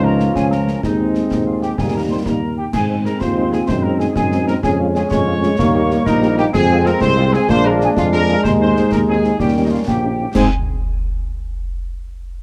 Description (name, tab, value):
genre	military-style march for wind band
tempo	126 BPM (dotted quarters)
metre	6/8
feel	straight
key	Ab major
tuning	A4 = 440 Hz
part	dark trumpet section	melody	0.0-10.5 s	Eb4 to Db5	-26 LUFS	equal	none
part	small flute group	second line	0.0-10.5 s	Eb5 to Db6	-29 LUFS	equal	none
part	warm euphonium	second line	0.0-10.0 s	G3 to F4	-24 LUFS	equal	none
part	warm French horn section	accompaniment	0.0-10.5 s	F3 to G4	-26 LUFS	equal	none
part	clear trombone section	sustained chords	0.0-10.5 s	F3 to Eb4	-25 LUFS	equal	none
part	warm tuba	bass	0.0-10.5 s	Bb1 to Ab2	-21 LUFS	equal	none
part	concert snare drum, concert bass drum and clash cymbals	drums	0.2-10.5 s	none	-26 LUFS	equal	none
room	light reverb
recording	dark, warm production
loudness	-16 LUFS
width	mono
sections	0.0-10.3 A section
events	none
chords	0.0 Bbm/Db; 0.8 Ab/Eb; 1.8 Eb; 2.7 Ab; 3.7 Ab7/Gb; 4.6 Db/F; 5.6 Eb; 6.5 Fm; 7.5 Bb7; 8.4 Ab/Eb; 9.4 Eb7; 10.3 Ab